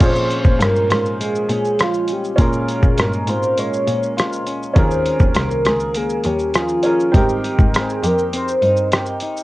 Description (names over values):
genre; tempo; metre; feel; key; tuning
indie pop, bedroom pop; 101 BPM; 4/4; straight; Bb dorian; A4 = 441 Hz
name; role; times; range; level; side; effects
warm velvety synth lead; melody; 0.0-8.9 s; F4 to Db5; -20 LUFS; equal; wide subtle chorus, cassette tape, tape echo
bright upright piano; accompaniment; 0.0-9.4 s; C4 to C5; -24 LUFS; right 2 dB; cassette tape
semi-hollow electric guitar; accompaniment; 0.0-9.4 s; Bb2 to Ab4; -25 LUFS; left 2 dB; wide subtle chorus, warbly pitch drift, cassette tape
warm cello; bass; 0.0-9.1 s; C2 to Bb2; -23 LUFS; equal; none
dusty soul sampler-style drum kit; drums; 0.0-9.4 s; crash cymbal, hi-hat, kick drum, rim click, shaker; -17 LUFS; equal; cassette tape
room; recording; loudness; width
light reverb; home recording on cassette; -15 LUFS; side -18 dB against mid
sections
0.0-9.4 A section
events
none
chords
0.0 Bbm7; 4.8 Eb7sus4; 7.1 Abmaj7